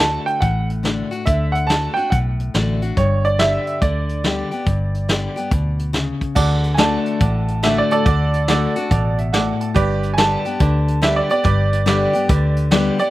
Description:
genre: honky-tonk and classic country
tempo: 141 BPM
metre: 4/4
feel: swing 65% on 8ths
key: D major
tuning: A4 = 439 Hz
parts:
  - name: bright upright piano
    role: melody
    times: 0.0-13.1 s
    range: A4 to A5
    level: -21 LUFS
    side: right 2 dB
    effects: slapback echo
  - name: picked steel-string acoustic guitar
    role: accompaniment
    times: 0.0-13.1 s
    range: G2 to G4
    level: -22 LUFS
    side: left 4 dB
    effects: slapback echo
  - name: vintage muted fingered electric bass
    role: bass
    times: 0.0-12.9 s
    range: G1 to D2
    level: -20 LUFS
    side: equal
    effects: none
  - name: vintage brush drum kit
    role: drums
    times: 0.3-13.1 s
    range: crash cymbal, hi-hat, kick drum, snare drum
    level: -20 LUFS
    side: equal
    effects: none
  - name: bright baby grand piano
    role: accompaniment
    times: 6.4-13.1 s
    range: F#4 to A5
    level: -25 LUFS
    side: right 6 dB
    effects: slapback echo
room: little or no reverb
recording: recorded outdoors, with no room sound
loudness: -16 LUFS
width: side -16 dB against mid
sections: 0.0-6.4 A section; 6.4-13.1 B section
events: upright piano solo 6.4-13.1; grand piano fill 8.9-9.8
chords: 0.0 D; 3.0 G; 6.4 D; 9.8 G

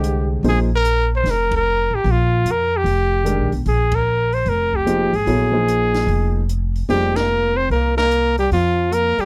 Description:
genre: modal jazz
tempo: 148 BPM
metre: 4/4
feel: swing 65% on 8ths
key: unclear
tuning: A4 = 440 Hz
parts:
  - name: clear trumpet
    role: melody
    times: 0.0-9.3 s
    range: F4 to C5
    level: -21 LUFS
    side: equal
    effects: none
  - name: warm upright piano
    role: accompaniment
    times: 0.0-0.7, 3.2-7.1 s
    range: D3 to Eb5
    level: -24 LUFS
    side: equal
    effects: none
  - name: upright bass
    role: bass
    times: 0.0-9.2 s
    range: F1 to F2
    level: -22 LUFS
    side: equal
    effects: none
  - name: open jazz drum kit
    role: drums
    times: 0.0-9.2 s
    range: hi-hat, kick drum, ride cymbal, snare drum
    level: -34 LUFS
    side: equal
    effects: none
  - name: clear trombone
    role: second line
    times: 6.9-9.3 s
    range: F3 to C4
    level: -27 LUFS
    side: equal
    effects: none
room: studio reverb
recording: dry, close 1970s-style studio recording, faint mains hum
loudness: -18 LUFS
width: mono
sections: 0.0-9.3 A section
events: band accent 1.4, 3.9, 7.1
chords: 0.4 Bb9sus4; 6.9 Fsus4

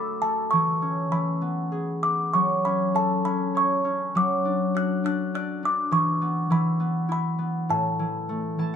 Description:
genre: children's music, lullaby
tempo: 100 BPM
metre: 3/4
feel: rubato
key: unclear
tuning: A4 = 440 Hz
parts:
  - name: music box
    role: melody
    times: 0.0-8.8 s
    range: A5 to F#6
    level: -25 LUFS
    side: equal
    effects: plate reverb
  - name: concert harp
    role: accompaniment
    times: 0.0-8.8 s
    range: A2 to A5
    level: -25 LUFS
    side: left 1 dB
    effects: none
room: light reverb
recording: none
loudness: -22 LUFS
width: side -8 dB against mid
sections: 0.0-8.8 A section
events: harp fill 8.3-8.8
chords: 0.0 D; 0.5 C#m/E; 1.1 E; 2.3 F#m; 4.2 D/F#; 5.9 E5; 7.7 A5

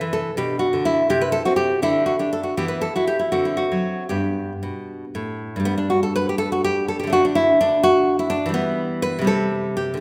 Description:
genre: classical, baroque-style dance for nylon-string guitar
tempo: 76-85 BPM (dotted quarters)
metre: 6/8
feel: rubato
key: G major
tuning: A4 = 440 Hz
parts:
  - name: nylon-string guitar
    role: solo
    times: 0.0-10.0 s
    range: G2 to B4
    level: -21 LUFS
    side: equal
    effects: none
room: wet scoring stage reverb, RT60 1.8 s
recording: recorded in a church or concert hall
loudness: -21 LUFS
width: mono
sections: 0.0-5.7 A section; 5.7-10.0 B section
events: none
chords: 0.4 Bmadd11; 1.1 C; 1.8 N.C.; 2.6 E5; 3.3 D7; 4.1 G; 5.7 N.C.; 7.1 D5; 8.5 Em; 9.3 Am7/C

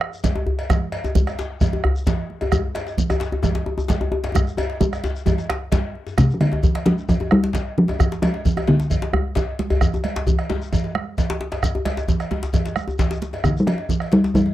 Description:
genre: west african traditional, West African drum ensemble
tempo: 132 BPM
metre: 4/4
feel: straight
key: unclear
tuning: A4 = 440 Hz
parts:
  - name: bombo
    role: percussion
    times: 0.0-14.5 s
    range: none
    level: -22 LUFS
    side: equal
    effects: none
  - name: djembe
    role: percussion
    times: 0.1-14.5 s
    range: none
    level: -31 LUFS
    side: left 4 dB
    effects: none
  - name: shekere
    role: percussion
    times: 0.1-14.5 s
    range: none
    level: -30 LUFS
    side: left 2 dB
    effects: none
  - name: congas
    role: percussion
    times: 0.2-14.5 s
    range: none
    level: -26 LUFS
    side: right 6 dB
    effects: none
  - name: cowbell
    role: percussion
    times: 0.2-14.5 s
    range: none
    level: -32 LUFS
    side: equal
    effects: none
  - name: djembe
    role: percussion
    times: 0.4-14.3 s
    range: none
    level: -24 LUFS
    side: left 2 dB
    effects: none
  - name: talking drum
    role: melody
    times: 6.2-9.6, 13.4-14.5 s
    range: C3 to G3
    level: -18 LUFS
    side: equal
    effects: none
room: light reverb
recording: dry, close 1970s-style studio recording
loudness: -19 LUFS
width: side -14 dB against mid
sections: 0.0-6.2 A section; 6.2-14.5 B section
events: drum fill 4.4-6.2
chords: none

